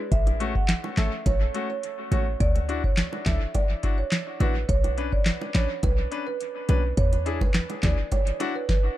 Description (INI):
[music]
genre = dancehall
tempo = 105 BPM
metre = 4/4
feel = straight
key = A major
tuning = A4 = 440 Hz
[part]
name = marimba with medium mallets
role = melody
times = 0.1-8.8 s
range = B4 to F#5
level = -31 LUFS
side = right 4 dB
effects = dub echo
[part]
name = short 808-style bass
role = bass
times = 0.1-8.0 s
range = G#1 to E2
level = -25 LUFS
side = equal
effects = none
[part]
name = booming analog drum machine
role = drums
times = 0.1-8.9 s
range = handclaps, hi-hat, kick drum, snare drum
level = -25 LUFS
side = equal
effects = overdrive, dub echo
[part]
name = bongos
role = percussion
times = 0.3-8.5 s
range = none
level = -38 LUFS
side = right 6 dB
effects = dub echo
[part]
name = clear concert grand piano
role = accompaniment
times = 0.4-8.5 s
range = A3 to B4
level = -32 LUFS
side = left 5 dB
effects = sidechain pumping, dub echo
[sound]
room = studio ambience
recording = echo-heavy mix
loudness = -22 LUFS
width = side -14 dB against mid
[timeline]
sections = 0.0-9.0 A section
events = none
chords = 0.1 A6; 2.4 Dadd9; 4.7 Bmadd9; 7.0 E7(no3)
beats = | 0.12 0.69 1.26 1.83 | 2.40 2.97 3.55 4.12 | 4.69 5.26 5.83 6.40 | 6.97 7.55 8.12 8.69